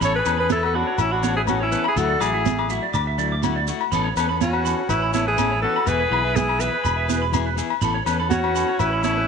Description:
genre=highlife guitar band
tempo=123 BPM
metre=4/4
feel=straight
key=A major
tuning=A4 = 441 Hz
part: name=bright alto saxophone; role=melody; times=0.0-9.3 s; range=E4 to C#5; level=-23 LUFS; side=equal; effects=none
part: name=clear trumpet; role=second line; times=0.0-9.3 s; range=C#4 to A4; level=-30 LUFS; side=left 7 dB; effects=none
part: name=clean electric guitar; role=accompaniment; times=0.0-9.2 s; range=E3 to A4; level=-28 LUFS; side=left 8 dB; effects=none
part: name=electric guitar through a small old amp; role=arpeggios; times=0.0-9.2 s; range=B4 to D6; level=-27 LUFS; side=right 8 dB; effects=slapback echo
part: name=fingered electric bass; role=bass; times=0.0-9.3 s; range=E1 to E2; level=-26 LUFS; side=right 1 dB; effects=none
part: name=congas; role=percussion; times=0.0-9.2 s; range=none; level=-28 LUFS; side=right 12 dB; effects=none
part: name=shekere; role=percussion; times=0.0-9.2 s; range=none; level=-31 LUFS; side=right 6 dB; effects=none
part: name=agogo bells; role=percussion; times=0.3-8.9 s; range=none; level=-28 LUFS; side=left 14 dB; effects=none
room=moderate echo chamber reverb, RT60 1.5 s, studio ambience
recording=1960s-style stereo with parts hard left and right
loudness=-19 LUFS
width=side -6 dB against mid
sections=0.0-9.3 A section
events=none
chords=0.0 Aadd9; 2.0 Dadd9; 3.9 Aadd9; 5.9 E; 7.8 Aadd9

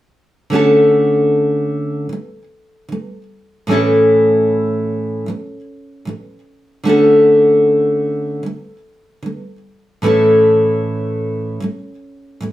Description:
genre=pop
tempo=76 BPM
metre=4/4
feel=swing 55% on 16ths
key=D major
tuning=A4 = 441 Hz
part: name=nylon-string guitar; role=accompaniment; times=0.5-12.5 s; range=A2 to A4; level=-12 LUFS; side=equal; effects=none
room=moderate studio reverb, RT60 0.7 s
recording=heard from further back in the room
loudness=-12 LUFS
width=side -14 dB against mid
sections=0.5-12.5 A section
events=none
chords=0.5 Dmaj7; 3.7 A; 6.9 Dmaj7; 10.0 A

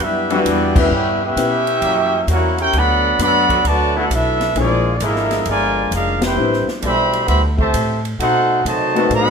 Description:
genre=jazz, big band swing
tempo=132 BPM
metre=4/4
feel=swing 66% on 8ths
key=unclear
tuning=A4 = 437 Hz
part: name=clear trumpet section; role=melody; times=0.0-9.3 s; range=A#3 to B5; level=-17 LUFS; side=right 1 dB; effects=none
part: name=warm trombone section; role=second line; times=0.0-9.3 s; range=B2 to G4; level=-23 LUFS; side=right 1 dB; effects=none
part: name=upright bass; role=bass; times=0.0-9.3 s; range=E#1 to C3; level=-22 LUFS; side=equal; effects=none
part: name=swinging big-band drum kit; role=drums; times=0.0-9.3 s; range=crash cymbal, hi-hat, kick drum, ride cymbal, snare drum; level=-25 LUFS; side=equal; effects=none
part: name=warm upright piano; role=accompaniment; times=0.3-9.3 s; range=E#3 to B4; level=-20 LUFS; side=left 4 dB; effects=none
part: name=clear trombone section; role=sustained chords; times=0.3-9.1 s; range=B2 to G4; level=-25 LUFS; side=equal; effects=none
room=moderate large studio reverb, RT60 1.0 s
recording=minimal, uncompressed stereo recording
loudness=-14 LUFS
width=side -6 dB against mid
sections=0.0-9.3 A section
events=band accent 0.7, 6.1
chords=0.0 Em9; 0.9 C#m7b5; 1.8 F#7b9; 2.7 Bm7; 4.5 A#7#11; 6.4 Am11; 8.2 B7b9

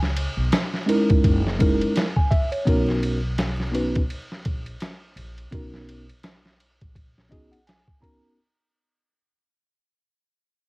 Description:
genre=hip hop, jazz-hop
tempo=84 BPM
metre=4/4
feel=swing 59% on 16ths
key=B major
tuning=A4 = 440 Hz
part: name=upright bass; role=bass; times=0.0-7.4 s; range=F#1 to C#2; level=-27 LUFS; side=equal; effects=none
part: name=boom bap sampler-style drum kit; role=drums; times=0.0-8.2 s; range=hi-hat, kick drum, ride cymbal, snare drum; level=-23 LUFS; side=equal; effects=cassette tape
part: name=mellow tine electric piano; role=accompaniment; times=0.9-8.4 s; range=G#3 to A#5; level=-23 LUFS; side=equal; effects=medium stereo tremolo, cassette tape
room=light reverb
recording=home recording on cassette, vinyl crackle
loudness=-20 LUFS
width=side -24 dB against mid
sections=0.0-8.4 A section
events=fade-out 0.0-8.4; tine electric piano fill 7.0-8.4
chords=0.0 C#madd9; 1.2 F#13; 2.7 Bmaj9

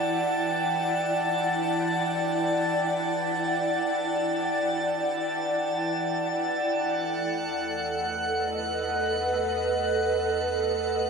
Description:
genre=ambient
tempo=free time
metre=none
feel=none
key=E minor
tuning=A4 = 442 Hz
part: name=ethereal airy pad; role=sustained chords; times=0.0-11.1 s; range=E4 to G5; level=-26 LUFS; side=equal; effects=ensemble chorus, built-in reverb
part: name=bowed-like drone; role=drone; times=0.0-6.8 s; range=E3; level=-37 LUFS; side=left 1 dB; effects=built-in reverb
part: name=drifting glass-harmonics texture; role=texture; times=0.0-11.1 s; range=F#5 to A6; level=-31 LUFS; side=right 2 dB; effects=chorus, built-in reverb
part: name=round analog bass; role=bass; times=6.7-11.1 s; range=E2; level=-41 LUFS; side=left 1 dB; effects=none
room=wet concert hall reverb, RT60 2.2 s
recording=none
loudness=-24 LUFS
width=side -5 dB against mid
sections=0.0-6.7 A section; 6.7-11.1 B section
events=none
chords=0.0 Em9; 6.7 B7/E

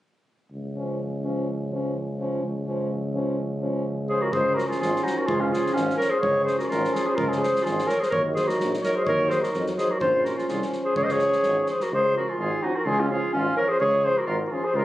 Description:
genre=balkan folk, Balkan brass band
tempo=127 BPM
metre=2/4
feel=swing 55% on 16ths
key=Db major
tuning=A4 = 440 Hz
part: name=warm tuba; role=bass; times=0.5-14.8 s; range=Ab1 to F2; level=-29 LUFS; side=equal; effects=none
part: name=clear French horn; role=accompaniment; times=0.8-14.6 s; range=Db4 to Eb4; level=-33 LUFS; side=left 3 dB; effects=none
part: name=clear trombone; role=accompaniment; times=0.8-14.6 s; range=F3 to Gb3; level=-33 LUFS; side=right 2 dB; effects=none
part: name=mellow flugelhorn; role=melody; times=4.1-14.8 s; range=F4 to Eb5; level=-24 LUFS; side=equal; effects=none
part: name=clear clarinet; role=second line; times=4.1-14.8 s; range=Db4 to C5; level=-26 LUFS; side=right 1 dB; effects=none
part: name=unplugged drum kit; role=percussion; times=4.3-11.9 s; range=kick drum, snare drum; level=-38 LUFS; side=equal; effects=none
room=light reverb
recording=recorded on a phone in the room, club reverb, nothing above 10.7 kHz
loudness=-22 LUFS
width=side -14 dB against mid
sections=0.5-4.3 A section; 4.3-11.9 B section; 11.9-14.8 B section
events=none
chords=0.5 Db; 8.1 Ebm; 10.0 Bbm; 11.0 Db

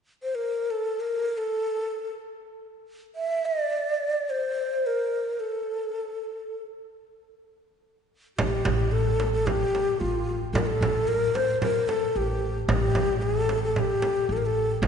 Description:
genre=Arabic maqam ensemble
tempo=free time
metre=none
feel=none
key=A maqam kurd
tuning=A4 = 441 Hz
part: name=breathy mellow ney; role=melody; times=0.2-14.9 s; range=F4 to E5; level=-26 LUFS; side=left 1 dB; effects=none
part: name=upright bass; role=bass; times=8.4-14.9 s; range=A1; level=-28 LUFS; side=equal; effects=none
part: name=frame drum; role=percussion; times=8.4-14.9 s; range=none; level=-29 LUFS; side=right 2 dB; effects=none
room=wet church reverb, RT60 3.1 s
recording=recorded in a church or concert hall, nothing above 10.5 kHz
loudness=-24 LUFS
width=side -7 dB against mid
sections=0.0-8.4 A section; 8.4-14.9 B section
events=none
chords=none

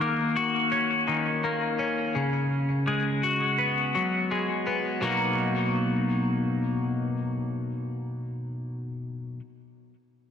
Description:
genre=rock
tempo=84 BPM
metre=4/4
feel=straight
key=B major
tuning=A4 = 440 Hz
part: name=twelve-string electric guitar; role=arpeggios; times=0.0-9.4 s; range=B2 to F#4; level=-25 LUFS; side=left 1 dB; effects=phaser, digital delay, slapback echo
room=wet lush hall reverb, RT60 1.9 s, small room ambience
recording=big arena sound, lossy compression artefacts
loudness=-25 LUFS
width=side -8 dB against mid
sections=0.0-5.0 A section; 5.0-7.9 B section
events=none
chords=0.0 D#m7; 2.2 C#7sus4; 5.0 Bmaj7

